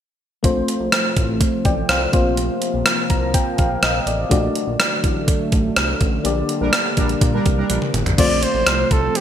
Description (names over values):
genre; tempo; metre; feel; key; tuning
1980s-style pop; 124 BPM; 4/4; straight; unclear; A4 = 443 Hz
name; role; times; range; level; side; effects
FM electric piano with tremolo; accompaniment; 0.4-9.2 s; A3 to Bb5; -23 LUFS; left 3 dB; none
sweeping resonant pad; sustained chords; 0.4-9.2 s; C3 to Bb3; -26 LUFS; right 2 dB; chorus
chorused synth bass; bass; 0.4-9.1 s; G1 to Bb2; -24 LUFS; equal; none
clean 12-bit digital drum machine; drums; 0.4-9.2 s; crash cymbal, hi-hat, kick drum, rim click, toms; -18 LUFS; equal; gated reverb
analog synth brass; stabs; 6.6-7.8 s; G3 to Bb4; -24 LUFS; right 3 dB; chorus
warm flugelhorn; melody; 8.2-9.2 s; G4 to D5; -19 LUFS; right 1 dB; none
room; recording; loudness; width
moderate lush hall reverb, RT60 2.1 s; bright 1980s-style digital production; -16 LUFS; side -9 dB against mid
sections
0.4-8.2 A section; 8.2-9.2 B section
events
FM electric piano fill 2.9-4.3; band accent 6.2-8.2; drum fill 7.7-8.2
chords
0.4 F; 4.3 D; 6.2 Gm/Bb; 8.2 F